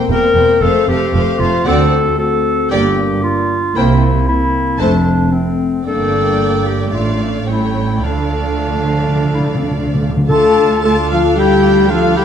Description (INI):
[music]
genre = quick classical-period movement for symphony orchestra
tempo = 104-116 BPM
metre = 4/4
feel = rubato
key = D minor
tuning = A4 = 436 Hz
[part]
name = dark chamber violin section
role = melody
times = 0.0-12.2 s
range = F5 to A5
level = -27 LUFS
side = left 4 dB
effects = none
[part]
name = rich chamber violin section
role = second line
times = 0.0-12.2 s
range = C5 to A5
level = -24 LUFS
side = left 2 dB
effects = none
[part]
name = rich chamber viola section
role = accompaniment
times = 0.0-12.2 s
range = A3 to A4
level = -22 LUFS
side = right 2 dB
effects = none
[part]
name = mellow French horn section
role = sustained chords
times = 0.0-12.2 s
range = F3 to Bb4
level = -18 LUFS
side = left 4 dB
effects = none
[part]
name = warm clarinet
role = second line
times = 0.1-12.2 s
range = C4 to Bb4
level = -18 LUFS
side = left 2 dB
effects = none
[part]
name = rich chamber cello section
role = bass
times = 0.1-12.2 s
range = D2 to A3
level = -20 LUFS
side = right 3 dB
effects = none
[part]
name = rich chamber double bass section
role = bass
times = 0.1-12.2 s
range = E1 to D2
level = -19 LUFS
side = right 3 dB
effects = none
[part]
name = timpani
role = percussion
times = 8.0-11.1 s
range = D3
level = -20 LUFS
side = equal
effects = none
[part]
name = concert flute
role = second line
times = 10.3-12.2 s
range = F5 to A5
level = -23 LUFS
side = equal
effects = none
[part]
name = warm oboe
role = second line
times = 10.3-12.2 s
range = F4 to A4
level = -22 LUFS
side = right 2 dB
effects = none
[sound]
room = moderate scoring stage reverb, RT60 1.9 s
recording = dark, warm production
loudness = -12 LUFS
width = side -8 dB against mid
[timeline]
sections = 0.0-10.3 A section; 10.3-12.2 B section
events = timpani fill 8.0-10.3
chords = 0.0 C7/E; 0.6 F; 1.7 D7; 2.7 Gm; 3.8 C7; 4.8 F; 5.9 Gm; 6.9 Dm/A; 7.5 A7; 8.0 Dm